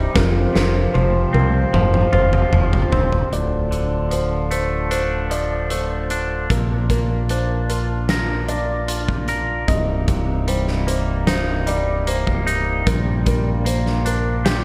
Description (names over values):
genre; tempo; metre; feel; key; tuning
post-rock; 75 BPM; 4/4; straight; unclear; A4 = 441 Hz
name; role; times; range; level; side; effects
pedal harmonium; sustained chords; 0.0-14.6 s; C3 to C5; -29 LUFS; equal; none
felt-muted upright piano; arpeggios; 0.0-14.6 s; Bb4 to Eb5; -30 LUFS; equal; slapback echo
twangy electric guitar; arpeggios; 0.0-14.6 s; C2 to Bb4; -27 LUFS; equal; slapback echo
modern bright fingered electric bass; bass; 0.0-14.6 s; C1 to C2; -24 LUFS; equal; none
big rock drum kit; drums; 0.2-14.6 s; hi-hat, kick drum, snare drum, toms; -25 LUFS; equal; none
room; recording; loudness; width
moderate lush hall reverb, RT60 3.0 s; big arena sound; -20 LUFS; mono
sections
0.0-3.3 A section; 3.3-14.6 B section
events
drum fill 0.1-3.3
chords
0.1 Fsus2; 3.3 Dm7; 6.5 Bb; 9.7 Cm7; 12.9 Gm7/Bb